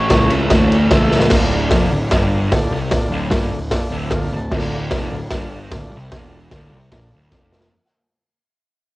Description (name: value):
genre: garage rock duo or trio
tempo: 150 BPM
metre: 4/4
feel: straight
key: D minor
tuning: A4 = 440 Hz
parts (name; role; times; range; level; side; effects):
- fuzz guitar; riff; 0.0-7.7 s; D2 to A3; -22 LUFS; equal; distortion, cassette tape
- fuzz picked electric bass; bass; 0.0-7.7 s; D1 to D2; -21 LUFS; equal; overdrive
- combo organ; sustained chords; 0.1-7.6 s; E4 to A5; -26 LUFS; equal; cassette tape
- raw garage drum kit; drums; 0.1-7.7 s; crash cymbal, hi-hat, kick drum, ride cymbal, snare drum; -18 LUFS; equal; cassette tape
room: little or no reverb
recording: home recording on cassette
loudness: -15 LUFS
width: side -19 dB against mid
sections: 0.0-1.3 A section; 1.3-7.7 B section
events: drum fill 1.1, 7.3-7.7; fade-out 1.3-7.7; transistor combo organ fill 3.7-4.5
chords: 0.0 A; 1.3 Dm